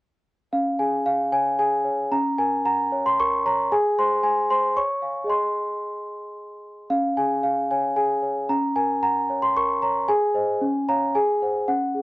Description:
classical, lullaby for celesta; 113 BPM; 3/4; straight; Db major; A4 = 440 Hz
celesta; solo; 0.5-12.0 s; Db4 to Db6; -20 LUFS; equal
little or no reverb; dry, close 1970s-style studio recording; -20 LUFS; side -20 dB against mid
0.5-12.0 A section
0.5 Db5; 2.1 Gb/Db; 3.7 Ab; 4.8 Db; 5.3 Ab; 6.9 Db5; 8.5 Gb/Db; 10.1 Ab; 10.6 Db; 11.1 Ab7

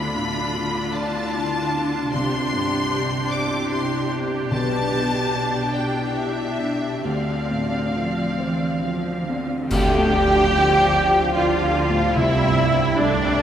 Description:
cinematic, emotional film score for orchestra; 66-77 BPM; 3/4; rubato; D dorian; A4 = 440 Hz
warm symphonic violin section; melody; 0.0-13.4 s; D5 to D6; -28 LUFS; left 2 dB
felt-muted upright piano; accompaniment; 0.0-13.4 s; B1 to D5; -26 LUFS; left 1 dB
rich symphonic viola section; accompaniment; 0.0-13.4 s; C4 to F5; -24 LUFS; right 1 dB
concert harp; arpeggios; 0.0-13.4 s; B2 to D5; -31 LUFS; left 4 dB
warm symphonic cello section; bass; 0.0-13.4 s; B2 to F3; -28 LUFS; right 2 dB
cymbal swell, clash cymbals and concert bass drum; percussion; 7.1-11.3 s; -30 LUFS; equal
mellow hollow large flute ensemble; second line; 9.7-13.4 s; D5 to G5; -23 LUFS; left 1 dB
rich studio violin section; second line; 9.7-13.4 s; D5 to G5; -26 LUFS; left 2 dB
mellow French horn section; sustained chords; 9.7-13.4 s; F3 to A3; -27 LUFS; equal
clear symphonic double bass section; bass; 9.7-13.4 s; C2 to D2; -27 LUFS; right 3 dB
wet cathedral reverb, RT60 5.4 s; recorded in a church or concert hall; -19 LUFS; side -9 dB against mid
0.0-9.7 A section; 9.7-13.4 A section
band accent 9.7-10.5
0.0 Dm; 2.1 Csus2; 4.5 G/B; 7.1 Dm7; 9.7 Dm; 12.2 Csus2

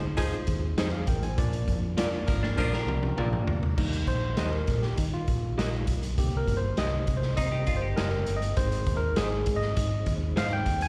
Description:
uptempo 1960s-style soul; 100 BPM; 4/4; straight; Eb major; A4 = 440 Hz
overdriven tine electric piano; accompaniment; 0.0-10.9 s; D3 to Ab5; -35 LUFS; equal; slapback echo
percussive tonewheel organ; sustained chords; 0.0-10.9 s; Eb3 to F4; -43 LUFS; equal
vintage muted fingered electric bass; bass; 0.0-10.9 s; Gb1 to Eb3; -32 LUFS; equal
warm saxophone section; second line; 0.2-2.8 s; F3 to Bb4; -37 LUFS; equal; slapback echo
raw garage drum kit; drums; 0.2-10.9 s; crash cymbal, hi-hat, kick drum, snare drum, toms; -32 LUFS; equal
electric guitar through a small old amp; stabs; 0.8-10.5 s; Eb4 to Eb5; -38 LUFS; equal; slapback echo
clean electric guitar; riff; 2.4-3.6, 7.4-8.5 s; Bb3 to Bb4; -37 LUFS; equal; slapback echo
little or no reverb; live gig heard through the venue's PA, recital hall reverb; -28 LUFS; mono
0.0-3.8 A section; 3.8-10.9 B section
drum fill 2.6-3.8; tine electric piano solo 3.8-10.9
0.0 Fm7; 1.4 Bb; 3.8 Eb; 6.2 Cm7; 8.6 Ab

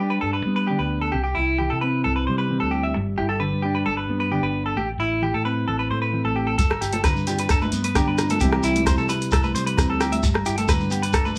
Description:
highlife guitar band; 132 BPM; 4/4; straight; G major; A4 = 440 Hz
mellow electric guitar; accompaniment; 0.0-11.4 s; E2 to G4; -28 LUFS; equal
clean electric guitar; arpeggios; 0.0-11.4 s; E4 to E5; -28 LUFS; equal
fingered electric bass; bass; 0.0-11.4 s; G1 to G3; -29 LUFS; equal
soft vintage rhythm box; drums; 6.6-11.2 s; hi-hat, kick drum, rim click; -26 LUFS; equal
shekere; percussion; 6.6-11.4 s; -33 LUFS; equal
agogo bells; percussion; 6.7-11.3 s; -35 LUFS; equal
congas; percussion; 6.9-11.4 s; -33 LUFS; equal
moderate studio reverb, RT60 0.7 s; band playing live in one room; -22 LUFS; mono
0.0-11.4 A section
0.0 Gadd9; 1.1 C; 3.0 Gadd9; 4.8 Am; 6.6 Gadd9; 8.4 C; 10.2 Gadd9

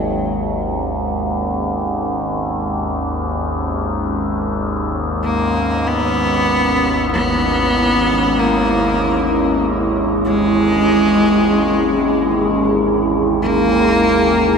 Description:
dark ambient drone; 48 BPM; 4/4; straight; A4 = 440 Hz
clear cello; melody; 0.0-14.6 s; F#3 to B3; -17 LUFS; equal; ping-pong delay
deep dark ambient pad; sustained chords; 0.0-14.6 s; G#3 to G#4; -20 LUFS; equal; chorus, built-in reverb
overtone-sweeping drone; drone; 0.0-14.6 s; G#1 to D#2; -19 LUFS; equal; chorus, built-in reverb
wet cathedral reverb, RT60 6.7 s; -14 LUFS; side -6 dB against mid
0.0-14.6 A section
fade-in on ambient pad 0.0-14.6
0.0 G#5; 3.4 E

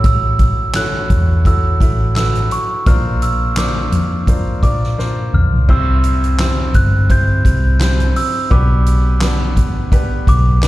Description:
piano-driven pop; 85 BPM; 4/4; swing 56% on 16ths; A4 = 440 Hz
glockenspiel with rubber mallets; melody; 0.0-10.7 s; C#6 to G6; -21 LUFS; right 2 dB; slapback echo, ping-pong delay
clear concert grand piano; accompaniment; 0.0-10.7 s; A2 to E5; -24 LUFS; left 1 dB
vintage muted fingered electric bass; bass; 0.0-10.7 s; G1 to Bb2; -15 LUFS; equal
soft-mallet drum kit; drums; 0.0-10.7 s; crash cymbal, handclaps, hi-hat, kick drum, snare drum, toms; -16 LUFS; equal
small room ambience; live gig heard through the venue's PA, club reverb; -12 LUFS; side -17 dB against mid
0.0-5.7 A section; 5.7-10.7 B section
drum fill 5.0-5.7
0.0 A6; 2.9 Bbadd9; 5.7 C; 8.5 G/B

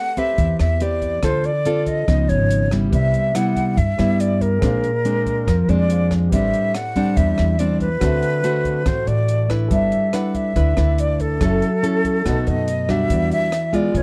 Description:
bossa nova; 142 BPM; 4/4; straight; A4 = 440 Hz
breathy silver concert flute; melody; 0.0-14.0 s; A4 to F#5; -25 LUFS; equal
nylon-string guitar; accompaniment; 0.0-14.0 s; G2 to B4; -23 LUFS; equal
compact cocktail drum kit; drums; 0.2-14.0 s; hi-hat, kick drum, rim click; -28 LUFS; equal
upright bass; bass; 0.4-14.0 s; F#1 to G2; -23 LUFS; equal
warm grand piano; accompaniment; 2.9-14.0 s; C4 to E#5; -35 LUFS; equal
light reverb; dark, warm production; -19 LUFS; mono
0.0-14.0 A section
0.0 Am9; 1.2 Dm7; 2.1 C#9; 2.9 Cmaj7; 4.6 A#9; 6.3 Am11; 8.0 D7; 9.7 G6; 11.4 F#m7; 12.3 B7; 13.1 Em9

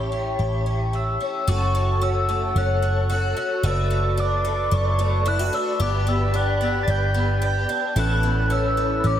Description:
dream pop; 111 BPM; 4/4; straight; A4 = 439 Hz
flute section; sustained chords; 0.0-9.2 s; C#4 to C#6; -28 LUFS; right 2 dB
picked twelve-string acoustic guitar; arpeggios; 0.0-9.2 s; E3 to A4; -27 LUFS; left 3 dB; ensemble chorus, dub echo
vintage muted picked electric bass; bass; 0.0-9.2 s; F#1 to A1; -22 LUFS; equal
soft octave-layered synth lead; melody; 0.9-9.2 s; C#6 to A6; -26 LUFS; equal; chorus, phaser, dub echo
light reverb; echo-heavy mix; -20 LUFS; side -10 dB against mid
0.0-1.5 A section; 1.5-9.2 B section
0.0 A7; 1.5 F#m; 3.6 Bm7/F#; 5.8 G; 8.0 Aadd9

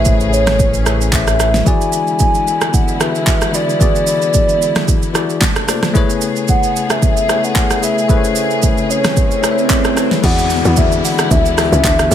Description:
amapiano; 112 BPM; 4/4; swing 55% on 16ths; A major; A4 = 439 Hz
hollow clarinet-like synth lead; melody; 0.0-12.1 s; C#5 to G#5; -18 LUFS; equal; chorus, ping-pong delay
bell-like tine electric piano; accompaniment; 0.0-12.1 s; E3 to E5; -19 LUFS; left 7 dB
warm symphonic string section; sustained chords; 0.0-12.1 s; C3 to G#4; -23 LUFS; equal; sidechain pumping
round analog bass; bass; 0.0-1.6 s; A1; -16 LUFS; right 1 dB
deep house drum kit; drums; 0.1-12.1 s; crash cymbal, handclaps, hi-hat, kick drum, rim click, shaker, snare drum; -15 LUFS; right 1 dB
swell and downlifter; sound effects; 8.5-12.1 s; -22 LUFS; right 3 dB
tight log drum bass; bass; 10.2-12.1 s; C#2 to E2; -16 LUFS; equal
light reverb; -12 LUFS; side -10 dB against mid
0.0-10.2 A section; 10.2-12.1 B section
swell 8.5-10.2; drop 10.2-12.1
0.0 Amaj9; 1.7 E7; 5.4 Bbmaj9; 6.0 Amaj9; 10.2 E7

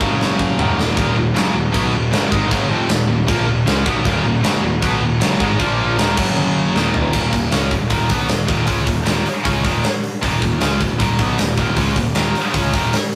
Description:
heavy metal; 156 BPM; 4/4; straight; Eb minor; A4 = 439 Hz
heavy high-gain guitar; riff; 0.0-12.9 s; Eb2 to Db4; -21 LUFS; equal; distortion
fuzz picked electric bass; bass; 0.0-12.9 s; Eb1 to Db2; -24 LUFS; equal; overdrive
tight metal drum kit; drums; 0.0-13.2 s; crash cymbal, hi-hat, kick drum, snare drum, toms; -22 LUFS; equal
moderate studio reverb, RT60 0.6 s; rough rehearsal-room recording, warm saturation; -17 LUFS; mono
0.0-7.1 A section; 7.1-13.2 B section
drum fill 0.2-1.0, 6.4-7.1
0.0 Gb5; 0.6 Ebm; 5.6 Bb5; 6.0 Eb5; 6.2 Gb5; 6.8 Eb5

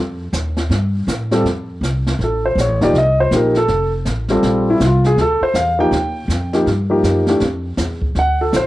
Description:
jazz piano trio; 161 BPM; 4/4; swing 63% on 8ths; F major; A4 = 443 Hz
upright bass; bass; 0.0-8.7 s; F1 to A2; -19 LUFS; equal
jazz brush drum kit; drums; 0.3-8.7 s; brushed snare drum, hi-hat, kick drum, snare drum; -24 LUFS; equal; cassette tape
warm upright piano; melody; 1.3-8.7 s; E3 to G5; -15 LUFS; equal; cassette tape
light reverb, small room ambience; home recording on cassette; -14 LUFS; side -16 dB against mid
0.0-1.5 A section; 1.5-8.7 B section
upright piano solo 1.5-8.7
0.0 F7; 1.5 F; 2.9 Cm7; 3.7 F; 4.4 Bbmaj9; 5.9 Ebadd9; 7.4 N.C.; 8.2 D5

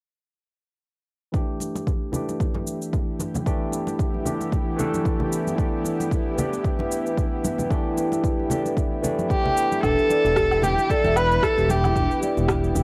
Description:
organic downtempo; 113 BPM; 4/4; swing 56% on 16ths; E minor pentatonic; A4 = 440 Hz
barky tine electric piano; accompaniment; 1.3-9.9 s; E3 to A4; -31 LUFS; equal; phaser, sidechain pumping, tape echo
bowed-like drone; sustained chords; 2.6-12.8 s; E3 to G4; -31 LUFS; equal; built-in reverb, sidechain pumping
electronic kick drum; drums; 1.3-12.6 s; -28 LUFS; equal
electronic shaker, woodblock and rim click; drums; 1.3-12.8 s; -32 LUFS; equal
congas; percussion; 1.6-12.8 s; -33 LUFS; equal
rich kamancheh; melody; 9.3-12.2 s; G4 to B4; -23 LUFS; equal; cassette tape, tape echo
marimba with medium mallets; arpeggios; 9.8-12.8 s; D4 to G5; -30 LUFS; equal; plate reverb
smooth gliding synth bass; bass; 9.8-12.8 s; E1; -27 LUFS; equal; sidechain pumping
moderate studio ambience, RT60 0.5 s; home recording on cassette; -23 LUFS; mono
1.3-9.8 A section; 9.8-12.8 B section
1.3 Em7

